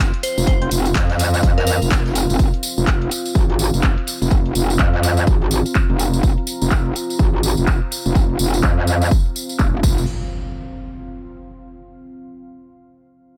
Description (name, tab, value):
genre	bass house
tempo	125 BPM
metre	4/4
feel	swing 60% on 16ths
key	unclear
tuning	A4 = 440 Hz
part	metallic wobble bass	bass	0.0-10.1 s	Eb1 to F2	-21 LUFS	equal	chorus, tube saturation, sidechain pumping
part	house drum kit	drums	0.0-9.9 s	crash cymbal, handclaps, hi-hat	-29 LUFS	equal	low-pass filter on hats, low-pass filter on cymbals, low-pass filter on snare
part	deep dark ambient pad	texture	0.0-12.0 s	C4 to C6	-32 LUFS	equal	chorus, built-in reverb, sidechain pumping
part	glassy synth bell	melody	0.2-1.8 s	Bb4 to C5	-29 LUFS	equal	chorus, phaser, dub echo
part	open jazz drum kit	drums	0.2-2.3 s	hi-hat, snare drum	-40 LUFS	equal	none
part	tambourine	percussion	0.2-10.1 s	none	-29 LUFS	equal	none
part	electronic kick drum	drums	0.5-9.9 s	none	-19 LUFS	equal	none
part	percussive organ stab	stabs	0.6-0.7 s	C4 to C5	-35 LUFS	equal	none
part	impact	sound effects	9.8-11.8 s	none	-32 LUFS	equal	none
room	little or no reverb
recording	none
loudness	-18 LUFS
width	mono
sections	0.0-10.1 A section; 10.1-12.0 B section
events	filter sweep on drum 0.0-10.1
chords	0.0 F5